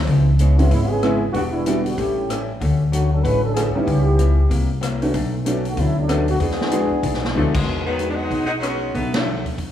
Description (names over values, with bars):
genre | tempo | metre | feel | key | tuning
jazz, big band swing | 189 BPM | 4/4 | swing 61% on 8ths | unclear | A4 = 445 Hz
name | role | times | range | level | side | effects
upright bass | bass | 0.0-9.7 s | E1 to E2 | -20 LUFS | left 1 dB | none
archtop guitar, miked and amplified | accompaniment | 0.1-7.6 s | A2 to G#4 | -28 LUFS | left 5 dB | none
swinging big-band drum kit | drums | 0.1-9.7 s | crash cymbal, hi-hat, kick drum, ride cymbal, rim click, snare drum | -28 LUFS | left 1 dB | none
muted trombone section | second line | 0.4-7.5 s | D3 to B4 | -23 LUFS | right 1 dB | none
warm upright piano | accompaniment | 0.6-9.3 s | E3 to F#4 | -25 LUFS | right 1 dB | none
clear saxophone section | melody | 7.4-9.4 s | B2 to D#4 | -23 LUFS | left 1 dB | none
room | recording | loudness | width
light reverb | small room ambience | -17 LUFS | side -10 dB against mid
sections
0.0-7.7 A section; 7.7-9.7 B section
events
trombone section solo 0.0-7.7; drum fill 7.4-7.7; band accent 7.5, 9.1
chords
0.1 C#m7; 1.3 Em7; 2.0 A7; 2.6 Dmaj7; 3.9 C#m7b5; 4.5 C7#11; 5.1 Bm7; 6.4 E7; 7.7 Emaj9; 8.9 Bm11